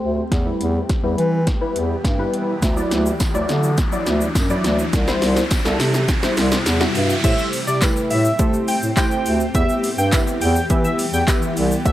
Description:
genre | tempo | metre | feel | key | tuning
dance-pop | 104 BPM | 4/4 | straight | E minor | A4 = 440 Hz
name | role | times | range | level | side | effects
funky polysynth comp | accompaniment | 0.0-11.9 s | F#3 to E5 | -23 LUFS | left 1 dB | chorus, low-pass filter
granular cloud pad | sustained chords | 0.0-11.9 s | C3 to G4 | -28 LUFS | left 1 dB | built-in reverb, sidechain pumping, low-pass filter
mellow bass clarinet | bass | 0.0-11.9 s | C2 to A3 | -20 LUFS | equal | sidechain pumping
riser | sound effects | 0.5-7.2 s | none | -29 LUFS | equal | none
deep house drum kit | drums | 0.3-11.9 s | crash cymbal, handclaps, hi-hat, kick drum, shaker, snare drum | -21 LUFS | equal | overdrive
tambourine | percussion | 3.2-11.4 s | none | -33 LUFS | right 1 dB | none
octave-doubled lead | melody | 7.2-11.9 s | D5 to G5 | -24 LUFS | equal | chorus
room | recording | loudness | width
little or no reverb | dry, gritty hardware recording | -16 LUFS | side -14 dB against mid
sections
0.0-7.2 A section; 7.2-11.9 B section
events
build-up 0.0-7.2; drum fill 0.0-7.2; filter sweep 0.0-7.2; riser 0.5-7.2; drop 7.2-11.9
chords
0.3 Em; 2.6 Dadd9; 4.9 C; 7.2 Am7; 9.5 Em

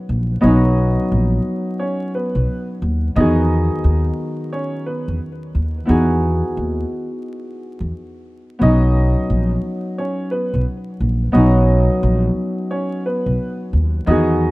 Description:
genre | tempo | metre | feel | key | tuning
hip hop, boom-bap hip-hop | 88 BPM | 4/4 | swing 62% on 16ths | B major | A4 = 440 Hz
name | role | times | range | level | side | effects
Celtic harp | accompaniment | 0.0-14.5 s | D#3 to G#4 | -20 LUFS | equal | cassette tape, high-pass filter, low-pass filter
upright bass | bass | 0.1-14.5 s | A#1 to E2 | -17 LUFS | equal | none
warm upright piano | melody | 0.4-14.5 s | B3 to D#5 | -24 LUFS | right 1 dB | high-pass filter, low-pass filter, ping-pong delay
room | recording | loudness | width
small room ambience | rough home demo mix, vinyl crackle | -16 LUFS | side -20 dB against mid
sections
0.0-8.6 A section; 8.6-14.5 B section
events
none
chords
0.0 Bmaj7; 3.2 Emaj7; 8.6 Bmaj7

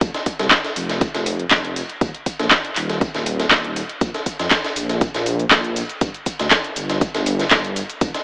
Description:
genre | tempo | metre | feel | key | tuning
progressive house | 120 BPM | 4/4 | straight | G minor | A4 = 440 Hz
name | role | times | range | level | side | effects
dark detuned saw bass | bass | 0.0-8.1 s | Eb1 to F2 | -24 LUFS | equal | sidechain pumping
breakbeat sampler-style drum kit | drums | 0.0-8.2 s | hi-hat, snare drum | -24 LUFS | equal | sidechain pumping on hats, high-pass filter on hats, high-pass filter on snare, high-pass filter on room
electronic kick drum | drums | 0.0-8.1 s | none | -20 LUFS | equal | none
house drum kit | drums | 0.0-8.2 s | cabasa, handclaps, hi-hat | -19 LUFS | equal | none
room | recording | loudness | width
light reverb, digital ambience | AM radio sound | -17 LUFS | side -32 dB against mid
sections
0.0-8.2 A section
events
none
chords
none

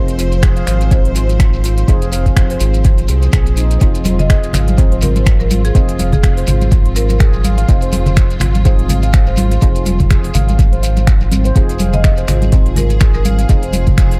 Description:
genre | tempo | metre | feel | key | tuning
afro house | 124 BPM | 4/4 | swing 57% on 16ths | F minor | A4 = 442 Hz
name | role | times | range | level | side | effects
rich studio string section | sustained chords | 0.0-14.2 s | F3 to C5 | -28 LUFS | equal | sidechain pumping
deep mellow chord stab | stabs | 0.0-14.2 s | C4 to C5 | -30 LUFS | equal | chorus, sidechain pumping, dub echo
round analog bass | bass | 0.0-14.2 s | F1 to C2 | -18 LUFS | equal | sidechain pumping
afro-pop drum kit | drums | 0.1-14.2 s | finger snaps, hi-hat | -28 LUFS | equal | dub echo
shekere | percussion | 0.1-14.2 s | none | -32 LUFS | equal | dub echo
handpan | arpeggios | 0.2-13.9 s | C4 to F5 | -27 LUFS | equal | sidechain pumping, analog delay
electronic kick drum | drums | 0.4-14.1 s | none | -14 LUFS | equal | none
congas | percussion | 4.0-14.1 s | none | -22 LUFS | equal | dub echo
marimba with medium hard mallets | melody | 4.2-7.2, 11.9-13.4 s | Ab4 to Eb5 | -28 LUFS | equal | analog delay
room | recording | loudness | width
small room ambience | echo-heavy mix | -13 LUFS | mono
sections
0.0-14.2 A section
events
none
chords
0.0 Fm7

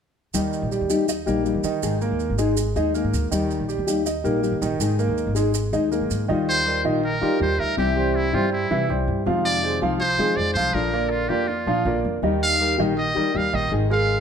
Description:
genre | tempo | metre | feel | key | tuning
latin, Cuban son and guajira | 162 BPM | 4/4 | straight | Eb major | A4 = 440 Hz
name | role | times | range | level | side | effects
nylon-string guitar | accompaniment | 0.3-14.2 s | C3 to Ab4 | -24 LUFS | left 6 dB | none
clear grand piano | arpeggios | 0.3-14.2 s | Eb3 to F5 | -25 LUFS | right 6 dB | none
upright bass | bass | 0.3-14.2 s | Ab1 to F3 | -27 LUFS | equal | none
maracas | percussion | 0.3-6.3 s | none | -33 LUFS | right 9 dB | none
trumpet with metal mute | melody | 6.5-14.2 s | E4 to F5 | -24 LUFS | equal | none
room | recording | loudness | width
light reverb | none | -20 LUFS | side -7 dB against mid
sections
0.3-6.3 A section; 6.3-14.2 B section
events
none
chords
0.3 Eb; 1.8 Absus2; 3.3 Eb; 4.8 Absus2; 6.3 Ebadd9; 7.8 C; 9.3 Fm7; 10.7 Bb; 12.2 Eb

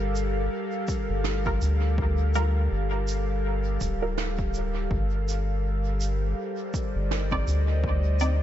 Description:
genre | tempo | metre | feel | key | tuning
ambient dub | 82 BPM | 4/4 | swing 57% on 16ths | G minor | A4 = 440 Hz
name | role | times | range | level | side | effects
airy breathy pad | sustained chords | 0.0-8.4 s | G3 to F5 | -31 LUFS | equal | chorus
round analog bass | bass | 0.0-8.4 s | D1 to D2 | -25 LUFS | equal | none
shaker and snare drum | drums | 0.2-8.4 s | none | -37 LUFS | right 6 dB | dub echo
electronic kick drum | drums | 0.9-8.0 s | none | -31 LUFS | equal | overdrive
filtered dub chord stab | stabs | 1.5-8.4 s | G3 to D5 | -34 LUFS | right 2 dB | phaser, dub echo
room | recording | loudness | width
small room ambience | nothing above 7.7 kHz | -24 LUFS | side -12 dB against mid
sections
0.0-8.4 A section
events
none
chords
0.0 Gm7; 4.9 Cmadd9

